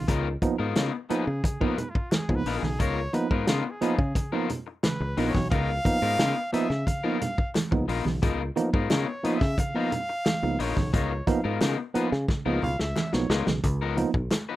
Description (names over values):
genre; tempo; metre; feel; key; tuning
funk; 88 BPM; 4/4; straight; Db mixolydian; A4 = 440 Hz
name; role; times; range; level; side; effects
clear trumpet; melody; 0.0-13.5 s; F4 to F5; -32 LUFS; equal; none
tine electric piano; stabs; 0.0-14.2 s; Db3 to Eb4; -28 LUFS; right 3 dB; medium stereo tremolo
fingered electric bass; bass; 0.0-14.3 s; Bb1 to Db3; -29 LUFS; equal; none
electric guitar at the edge of break-up; accompaniment; 0.1-14.6 s; F3 to Cb5; -32 LUFS; left 7 dB; none
warm soul drum kit; drums; 0.1-14.5 s; hi-hat, kick drum, snare drum; -27 LUFS; equal; none
congas; percussion; 0.4-14.5 s; none; -34 LUFS; right 3 dB; none
group handclap; percussion; 0.8-14.5 s; none; -44 LUFS; left 5 dB; none
room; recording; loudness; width
little or no reverb; rough home demo mix; -24 LUFS; side -15 dB against mid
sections
0.0-13.6 A section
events
trumpet solo 0.0-13.6; drum fill 12.3-13.6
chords
0.0 Db13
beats
| 0.09 0.77 1.44 2.12 | 2.80 3.48 4.16 4.84 | 5.51 6.19 6.87 7.55 | 8.23 8.90 9.58 10.26 | 10.93 11.61 12.29 12.96 | 13.63 14.31